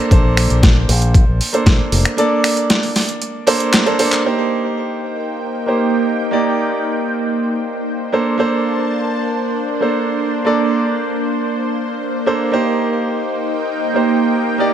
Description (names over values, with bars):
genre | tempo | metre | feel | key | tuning
nu-disco, nu disco | 116 BPM | 4/4 | straight | C dorian | A4 = 441 Hz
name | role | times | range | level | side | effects
clear concert grand piano | accompaniment | 0.0-14.7 s | Bb3 to D5 | -18 LUFS | right 2 dB | sidechain pumping, digital delay
fingered electric bass with an envelope filter | bass | 0.1-2.0 s | F1 to Bb1 | -16 LUFS | equal | none
dusty soul sampler-style drum kit | drums | 0.1-4.2 s | finger snaps, handclaps, hi-hat, snare drum | -17 LUFS | equal | overdrive, low-pass filter on hats, small room reverb, low-pass filter on snare
electronic kick drum | drums | 0.1-1.8 s | none | -11 LUFS | equal | overdrive, small room reverb
lush unison pad | sustained chords | 4.9-14.7 s | Bb3 to A5 | -19 LUFS | right 1 dB | chorus, phaser, sidechain pumping
room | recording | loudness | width
light reverb, digital ambience | none | -14 LUFS | side -10 dB against mid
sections
0.0-4.3 A section; 4.3-14.7 B section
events
break 2.2-4.3; drum fill 3.7-4.3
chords
0.0 Bbmaj9; 4.3 Cm7; 8.1 Bbmaj9; 12.5 Cm7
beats
| 0.12 0.63 1.15 1.67 | 2.18 2.70 3.22 3.73 | 4.25 4.77 5.29 5.80 | 6.32 6.84 7.36 7.87 | 8.39 8.91 9.43 9.94 | 10.46 10.98 11.49 12.01 | 12.53 13.05 13.56 14.08 | 14.60